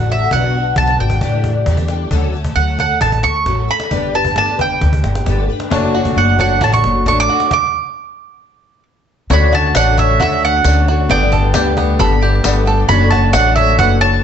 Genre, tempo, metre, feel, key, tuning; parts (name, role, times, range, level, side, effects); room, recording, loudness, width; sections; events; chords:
indie folk with a building arrangement; 134 BPM; 4/4; straight; D major; A4 = 440 Hz
mandolin; melody; 0.0-14.2 s; E5 to D6; -16 LUFS; right 5 dB; slapback echo
picked twelve-string acoustic guitar; accompaniment; 0.0-14.2 s; F#2 to D5; -21 LUFS; left 4 dB; ensemble chorus
upright bass; bass; 0.0-14.2 s; F#1 to E2; -16 LUFS; left 1 dB
cajon; drums; 0.3-13.9 s; -23 LUFS; equal
bright upright piano; accompaniment; 5.7-14.2 s; F#1 to D5; -22 LUFS; left 7 dB
bluegrass banjo; arpeggios; 5.7-14.2 s; B3 to C#5; -20 LUFS; right 2 dB; slapback echo
tambourine; percussion; 9.8-13.4 s; -25 LUFS; left 12 dB
light reverb; nothing above 8.0 kHz; -12 LUFS; side -8 dB against mid
0.0-2.1 A section; 2.1-9.3 B section; 9.3-14.2 C section
stop 7.5-9.3
0.3 Bm; 1.2 A7sus4; 2.1 Dmaj7; 3.9 Gadd9; 5.7 Dmaj7/F#; 7.5 N.C.; 9.3 Dmaj7; 11.1 Gadd9; 12.9 Dmaj7/F#